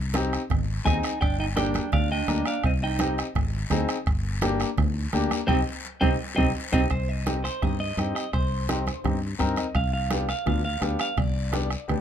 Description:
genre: latin, cumbia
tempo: 169 BPM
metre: 4/4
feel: straight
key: C minor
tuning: A4 = 440 Hz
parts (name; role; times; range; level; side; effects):
- fingered electric bass; bass; 0.0-12.0 s; G1 to G2; -28 LUFS; left 1 dB; none
- clear upright piano; accompaniment; 0.1-12.0 s; Bb3 to G5; -29 LUFS; left 3 dB; none
- congas; percussion; 0.1-12.0 s; none; -33 LUFS; right 3 dB; none
- bombo; percussion; 0.2-12.0 s; none; -28 LUFS; right 1 dB; none
- guiro; percussion; 0.2-12.0 s; none; -39 LUFS; left 5 dB; none
- clean electric guitar; melody; 0.9-3.2, 5.5-11.9 s; C5 to Ab5; -30 LUFS; right 2 dB; spring reverb
- growling clarinet; second line; 0.9-3.2, 5.5-6.8 s; C4 to Eb4; -30 LUFS; right 7 dB; none
room: light reverb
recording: close, detailed microphones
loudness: -23 LUFS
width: side -9 dB against mid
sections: 0.0-6.9 A section; 6.9-12.0 B section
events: band accent 5.5-6.9; clean electric guitar solo 6.9-12.0; upright piano fill 9.2-9.8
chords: 0.0 Cm; 0.5 Ab; 1.2 Gm; 2.6 Cm; 3.4 Ab; 4.1 Gm; 5.5 Cm; 9.8 G/C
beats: 0.15 0.50 0.86 | 1.22 1.57 1.93 2.28 | 2.64 2.99 3.35 3.71 | 4.06 4.42 4.77 5.13 | 5.48 5.84 6.20 6.55 | 6.91 7.26 7.62 7.98 | 8.33 8.69 9.04 9.40 | 9.76 10.11 10.47 10.82 | 11.18 11.54 11.89

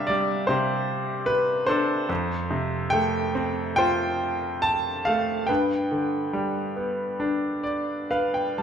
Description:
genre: classical, lyrical solo piano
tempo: 62-76 BPM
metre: 4/4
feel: rubato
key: G mixolydian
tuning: A4 = 441 Hz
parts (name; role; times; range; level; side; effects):
- bright grand piano; solo; 0.0-8.6 s; F2 to A5; -23 LUFS; equal; none
room: moderate recital hall reverb, RT60 1.4 s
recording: recorded in a church or concert hall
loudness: -23 LUFS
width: side -8 dB against mid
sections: 0.0-8.6 A section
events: grand piano fill 7.2-8.6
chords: 0.0 Csus2; 2.1 Fadd9; 5.5 G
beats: 0.49 1.29 | 2.10 2.94 3.79 4.65 | 5.50 6.34 7.21 8.12

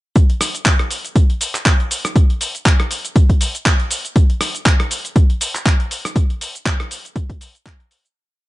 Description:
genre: house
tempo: 120 BPM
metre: 4/4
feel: swing 56% on 16ths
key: none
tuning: none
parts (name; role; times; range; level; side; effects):
- dusty soul sampler-style drum kit; drums; 0.2-8.1 s; handclaps, hi-hat, rim click, shaker; -20 LUFS; equal; sidechain pumping on hats, sidechain pumping on perc
- electronic kick drum; drums; 0.2-7.8 s; none; -13 LUFS; equal; overdrive
room: little or no reverb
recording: nothing above 10.9 kHz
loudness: -14 LUFS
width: side -18 dB against mid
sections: 0.2-8.2 drop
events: drop 0.2-8.2; fade-out 5.5-8.2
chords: none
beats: | 0.16 0.66 1.16 1.66 | 2.16 2.66 3.16 3.66 | 4.16 4.66 5.16 5.66 | 6.16 6.66 7.16 7.66

